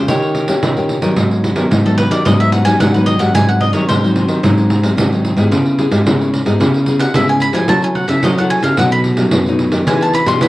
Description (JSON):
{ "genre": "samba and choro", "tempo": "110 BPM", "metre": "4/4", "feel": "straight", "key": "unclear", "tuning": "A4 = 439 Hz", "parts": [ { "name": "bowl-back mandolin", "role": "melody", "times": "0.0-10.5 s", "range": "A4 to C6", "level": "-18 LUFS", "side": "equal", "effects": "none" }, { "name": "nylon-string guitar", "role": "accompaniment", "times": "0.0-10.5 s", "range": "F#2 to A4", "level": "-18 LUFS", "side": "left 2 dB", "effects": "none" }, { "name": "nylon-string guitar", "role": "bass", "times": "0.0-10.5 s", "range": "G#2 to F#3", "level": "-15 LUFS", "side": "equal", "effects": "none" }, { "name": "pandeiro", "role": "percussion", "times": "0.1-10.5 s", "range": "none", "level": "-18 LUFS", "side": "right 1 dB", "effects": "none" } ], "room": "moderate studio reverb, RT60 0.8 s", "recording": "worn, warbling old tape, cassette tape, warbly pitch drift", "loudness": "-11 LUFS", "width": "side -17 dB against mid", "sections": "0.0-10.5 A section", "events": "mandolin solo 0.0-10.5", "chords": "0.1 D#7; 1.2 G#m7; 3.3 G#7; 5.5 C#m7; 7.7 F#m7; 8.8 B7; 9.9 Emaj7" }